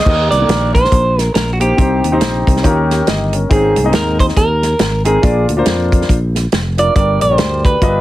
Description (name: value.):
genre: uptempo gospel.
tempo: 139 BPM.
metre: 4/4.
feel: swing 60% on 8ths.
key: Eb major.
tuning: A4 = 441 Hz.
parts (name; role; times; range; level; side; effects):
clean electric guitar; melody; 0.0-8.0 s; Gb4 to Eb5; -15 LUFS; right 2 dB; none.
warm concert grand piano; accompaniment; 0.0-8.0 s; G2 to Eb5; -17 LUFS; left 2 dB; none.
fingered electric bass; bass; 0.1-8.0 s; F1 to F2; -17 LUFS; equal; none.
warm soul drum kit; drums; 0.1-7.9 s; crash cymbal, hi-hat, kick drum, snare drum; -15 LUFS; equal; none.
room: light reverb.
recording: heavily compressed radio sound.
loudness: -11 LUFS.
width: side -15 dB against mid.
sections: 0.1-8.0 A section.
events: none.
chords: 0.1 Eb; 1.8 Cm; 2.6 Eb7; 3.5 Ab; 5.2 Bb; 7.0 Gm.